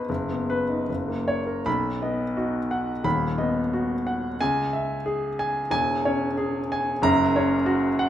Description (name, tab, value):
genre	classical, romantic character piece for solo piano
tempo	72-95 BPM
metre	2/4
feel	rubato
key	B major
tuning	A4 = 439 Hz
part	warm grand piano	solo	0.0-8.1 s	D#1 to B5	-22 LUFS	equal	none
room	wet recital hall reverb, RT60 1.7 s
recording	minimal, uncompressed stereo recording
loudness	-22 LUFS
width	side -11 dB against mid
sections	0.0-1.7 A section; 1.7-8.1 B section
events	none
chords	0.1 B/F#; 0.9 F#; 1.7 B; 3.0 B/D#; 4.4 C#m; 5.7 C#m/E; 7.0 F#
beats	| 0.08 0.89 | 1.66 2.36 | 3.05 3.72 | 4.40 5.07 | 5.73 6.38 | 7.04 7.68